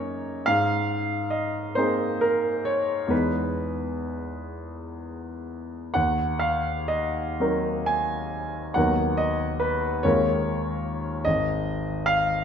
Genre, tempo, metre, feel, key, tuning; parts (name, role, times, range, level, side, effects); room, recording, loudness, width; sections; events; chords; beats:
classical, impressionist solo piano; 40-50 BPM (dotted quarters); 6/8; rubato; Eb minor; A4 = 440 Hz
clear concert grand piano; solo; 0.0-12.4 s; Ab1 to Ab5; -23 LUFS; equal
moderate scoring stage reverb, RT60 1.9 s; dark, warm production, nothing above 11.0 kHz; -23 LUFS; side -7 dB against mid
0.0-12.4 A section
0.5 Abadd9; 3.1 Emaj7; 6.0 Ebm6; 8.8 Bmaj7/D#; 10.0 Bbm9/Eb; 11.3 Ab5
| 0.46 1.76 | 3.11 4.52 | 5.95 7.39 | 8.76 10.04 | 11.26